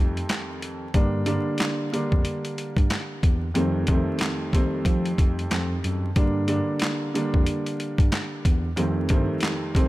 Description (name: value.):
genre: hip hop, boom-bap hip-hop.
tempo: 92 BPM.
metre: 4/4.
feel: swing 61% on 16ths.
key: G minor.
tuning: A4 = 444 Hz.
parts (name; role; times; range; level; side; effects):
dark concert grand piano; accompaniment; 0.0-9.9 s; F2 to D4; -26 LUFS; right 1 dB; high-pass filter, low-pass filter.
tine electric piano; bass; 0.0-9.3 s; E2 to F3; -27 LUFS; equal; medium stereo tremolo.
boom bap sampler-style drum kit; drums; 0.2-9.9 s; handclaps, hi-hat, kick drum, snare drum; -23 LUFS; equal; none.
room: little or no reverb.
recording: vinyl crackle.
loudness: -22 LUFS.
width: side -18 dB against mid.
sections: 0.0-9.9 A section.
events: none.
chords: 0.0 F7; 0.9 Gm; 3.5 F7; 6.2 Gm; 8.8 F7.